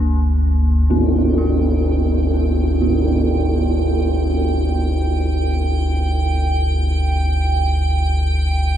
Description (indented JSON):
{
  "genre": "dark ambient drone",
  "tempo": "free time",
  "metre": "none",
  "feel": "none",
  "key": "G minor",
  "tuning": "A4 = 440 Hz",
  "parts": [
    { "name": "dark detuned synth bell", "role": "arpeggios", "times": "0.0-8.8 s", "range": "Bb3 to F4", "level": "-29 LUFS", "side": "left 2 dB", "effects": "chorus, ping-pong delay" },
    { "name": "deep rumbling drone", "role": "drone", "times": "0.0-8.8 s", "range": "G1 to D2", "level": "-17 LUFS", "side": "equal", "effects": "built-in reverb, lush chorus" },
    { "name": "tam-tam", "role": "percussion", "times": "0.9-3.0 s", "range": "none", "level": "-20 LUFS", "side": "right 2 dB", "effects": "low-pass filter on cymbals" },
    { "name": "icy glass pad", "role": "texture", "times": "1.5-8.8 s", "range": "G5", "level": "-27 LUFS", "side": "right 5 dB", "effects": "chorus, built-in reverb" }
  ],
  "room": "light reverb",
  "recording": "none",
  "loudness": "-15 LUFS",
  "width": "side -10 dB against mid",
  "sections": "0.9-8.8 A section",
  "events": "fade-in on ambient pad 0.9-8.8; fade-in on synth bell 0.9-8.8",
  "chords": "0.0 Gm"
}